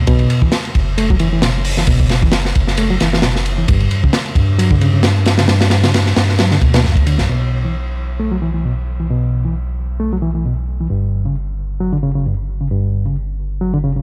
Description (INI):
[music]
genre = breakbeat, breaks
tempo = 133 BPM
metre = 4/4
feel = swing 55% on 16ths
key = B minor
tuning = A4 = 439 Hz
[part]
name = reed electric piano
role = riff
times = 0.0-14.0 s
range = F#2 to A3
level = -20 LUFS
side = equal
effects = low-pass filter, tape echo
[part]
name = saturated sub bass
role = bass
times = 0.0-14.0 s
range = F#1 to G2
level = -20 LUFS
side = equal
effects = tube saturation
[part]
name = crunchy breakbeat drum kit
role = drums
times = 0.1-7.3 s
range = hi-hat, kick drum, ride cymbal, snare drum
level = -18 LUFS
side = equal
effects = none
[sound]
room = studio reverb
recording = dry, gritty hardware recording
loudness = -16 LUFS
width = mono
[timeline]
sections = 0.0-7.3 A section; 7.3-14.0 B section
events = none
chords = 0.1 B5; 3.7 G5; 7.3 B5; 10.9 G5